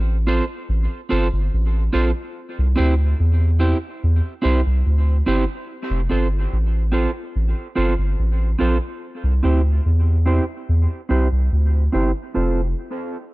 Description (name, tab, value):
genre	dub reggae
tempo	72 BPM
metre	4/4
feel	straight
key	F major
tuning	A4 = 437 Hz
part	soft dub sub bass	bass	0.0-12.7 s	F1 to E2	-17 LUFS	equal	none
part	clean electric guitar	accompaniment	0.3-12.6 s	C4 to C5	-24 LUFS	right 2 dB	low-pass filter, dub echo
room	little or no reverb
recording	dark, warm production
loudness	-17 LUFS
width	side -20 dB against mid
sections	0.0-12.4 A section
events	filter sweep on clean electric guitar 0.0-12.4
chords	0.0 F; 2.3 C; 5.7 F; 9.0 C; 12.4 F